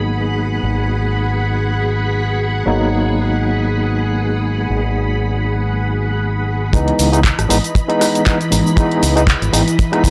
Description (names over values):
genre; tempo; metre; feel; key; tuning
nu-disco, nu disco; 118 BPM; 4/4; swing 56% on 16ths; C# dorian; A4 = 439 Hz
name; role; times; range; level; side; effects
barky tine electric piano; accompaniment; 0.0-10.1 s; E3 to D#4; -22 LUFS; equal; overdrive, fast tremolo, sidechain pumping, tape echo
string machine, full ensemble; sustained chords; 0.0-10.1 s; E3 to B5; -24 LUFS; equal; ensemble chorus, sidechain pumping
fingered electric bass with an envelope filter; bass; 0.0-10.1 s; G#1 to C#2; -21 LUFS; equal; sidechain pumping
house drum kit; drums; 6.7-10.1 s; cabasa, handclaps, hi-hat, rim click; -22 LUFS; equal; low-pass filter on hats, low-pass filter on perc, low-pass filter on snare, low-pass filter on room
kick drum; drums; 6.7-10.1 s; none; -16 LUFS; equal; none
room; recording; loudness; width
light reverb; dry, gritty hardware recording; -16 LUFS; mono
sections
0.0-6.7 A section; 6.7-10.1 B section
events
drop 6.7-10.1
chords
0.0 G#m7; 6.7 C#m9